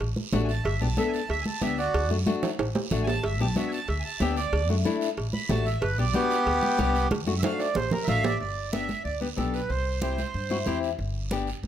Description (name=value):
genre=latin, cumbia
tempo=186 BPM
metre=4/4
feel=straight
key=G major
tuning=A4 = 440 Hz
part: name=upright bass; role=bass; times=0.0-11.7 s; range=G1 to G2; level=-29 LUFS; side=equal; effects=none
part: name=cowbell and timbales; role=percussion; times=0.0-8.3 s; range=none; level=-32 LUFS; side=right 4 dB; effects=none
part: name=guiro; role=percussion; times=0.0-11.7 s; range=none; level=-40 LUFS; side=right 8 dB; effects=none
part: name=congas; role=percussion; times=0.2-11.7 s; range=none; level=-32 LUFS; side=right 2 dB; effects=none
part: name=nylon-string guitar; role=accompaniment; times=0.3-11.5 s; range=A3 to A4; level=-30 LUFS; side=left 6 dB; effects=none
part: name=accordion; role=melody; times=0.4-10.8 s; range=B3 to B5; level=-29 LUFS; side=right 2 dB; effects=none
room=light reverb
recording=none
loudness=-24 LUFS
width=side -10 dB against mid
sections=0.0-8.4 A section; 8.4-11.7 B section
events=accordion solo 0.0-8.4; drum fill 2.4-3.2, 7.1-8.4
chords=0.0 D; 0.7 G; 1.9 D; 3.2 G; 4.5 D; 5.8 G; 7.1 D; 8.4 G; 9.7 C; 11.0 G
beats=0.01 0.33 | 0.65 0.97 1.30 1.62 | 1.94 2.27 2.59 2.91 | 3.24 3.56 3.88 4.21 | 4.53 4.85 5.18 5.50 | 5.82 6.14 6.47 6.79 | 7.11 7.43 7.76 8.08 | 8.40 8.73 9.05 9.37 | 9.70 10.02 10.34 10.67 | 10.99 11.31 11.64